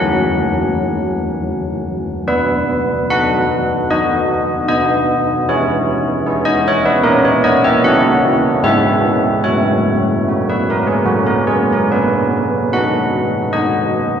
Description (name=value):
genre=classical, tune for church bells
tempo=75 BPM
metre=3/4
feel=uneven beats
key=B major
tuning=A4 = 440 Hz
part: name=old church bells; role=solo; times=0.0-14.2 s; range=F#3 to F#5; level=-13 LUFS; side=equal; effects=none
room=wet church reverb, RT60 2.5 s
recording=dark, warm production, nothing above 10.5 kHz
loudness=-13 LUFS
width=side -8 dB against mid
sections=0.0-2.3 A section; 2.3-14.2 B section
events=none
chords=0.0 F#; 2.3 B; 4.7 C#m7/B; 7.0 F#/A#; 8.6 E/G#; 9.4 F#; 11.9 B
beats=0.64 1.46 | 2.27 3.12 3.92 | 4.71 5.50 6.27 | 7.04 7.83 8.63 | 9.44 10.26 11.08 | 11.90 12.73 13.53